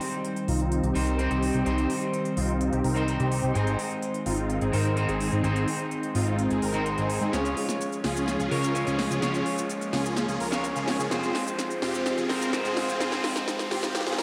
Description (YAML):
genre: EDM, festival progressive house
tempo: 127 BPM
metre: 4/4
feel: straight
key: Ab major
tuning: A4 = 439 Hz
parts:
  - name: electric guitar at the edge of break-up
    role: accompaniment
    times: 0.0-14.2 s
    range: G3 to Db5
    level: -33 LUFS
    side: equal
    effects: analog chorus, tape echo
  - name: lush unison pad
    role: sustained chords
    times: 0.0-14.2 s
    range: Eb3 to Db4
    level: -36 LUFS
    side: equal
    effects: chorus, phaser
  - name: big-room dance drum kit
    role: drums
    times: 0.0-14.2 s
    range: hi-hat, shaker, snare drum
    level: -36 LUFS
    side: equal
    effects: none
  - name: riser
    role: sound effects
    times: 0.0-14.2 s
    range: none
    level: -45 LUFS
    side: equal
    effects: none
  - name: supersaw chords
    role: riff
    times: 0.5-14.2 s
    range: C4 to Bb4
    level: -32 LUFS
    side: equal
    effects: phaser, low-pass filter, tape echo
  - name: fat analog bass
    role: bass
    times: 0.5-14.2 s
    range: F1 to Ab2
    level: -32 LUFS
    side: equal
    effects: none
room: moderate lush hall reverb, RT60 1.8 s, digital ambience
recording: dark, warm production, high-pass filter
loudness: -27 LUFS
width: mono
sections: 0.0-14.2 A section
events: build-up 0.0-14.2; filter sweep on supersaw synth 0.0-14.2; filter sweep 0.0-14.2; drum fill 7.3-14.2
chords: 0.0 Cm; 3.6 Ab; 7.3 Db; 11.1 Fm